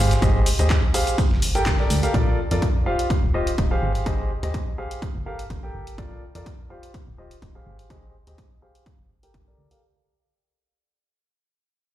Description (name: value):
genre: piano house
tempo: 125 BPM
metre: 4/4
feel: swing 54% on 16ths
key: unclear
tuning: A4 = 439 Hz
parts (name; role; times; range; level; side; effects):
- clear upright piano; riff; 0.0-9.8 s; F4 to G5; -27 LUFS; equal; sidechain pumping, low-pass filter, tape echo
- plucky analog bass; bass; 0.0-9.7 s; Eb1 to F2; -24 LUFS; equal; sidechain pumping
- dusty soul sampler-style drum kit; drums; 0.1-2.0 s; hi-hat, snare drum; -38 LUFS; left 1 dB; none
- punchy analog drum machine; drums; 0.1-9.8 s; cabasa, handclaps, hi-hat; -30 LUFS; equal; none
- electronic kick drum; drums; 0.2-9.4 s; none; -23 LUFS; equal; none
room: little or no reverb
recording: played on a big sound system in a bare room, large studio reverb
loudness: -19 LUFS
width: side -13 dB against mid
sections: 0.0-9.8 A section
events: fade-out 0.0-9.8; filter sweep on analog synth bass 0.0-9.8; filter sweep on upright piano 0.0-9.8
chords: 0.0 Abmaj7; 1.2 Gmadd9; 2.1 Bbmaj7; 2.9 Eb69; 3.8 Abmaj7; 5.0 Gm9; 6.0 Bbmaj7; 6.7 Eb69; 7.7 Abmaj7; 8.9 Gmadd9